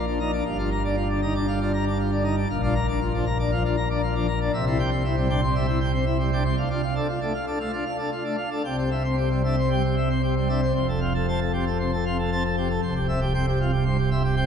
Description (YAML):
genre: classical, organ toccata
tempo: 117 BPM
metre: 4/4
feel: straight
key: F major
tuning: A4 = 440 Hz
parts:
  - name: pipe organ, plenum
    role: solo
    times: 0.0-14.5 s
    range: C1 to Bb5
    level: -22 LUFS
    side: equal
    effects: none
room: wet cathedral reverb, RT60 5.0 s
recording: heard from further back in the room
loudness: -22 LUFS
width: side -7 dB against mid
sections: 0.0-10.8 A section; 10.8-14.5 B section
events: none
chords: 0.5 Gm7; 2.5 Bb; 4.5 C; 6.6 Dm; 8.6 C; 10.8 F; 12.8 C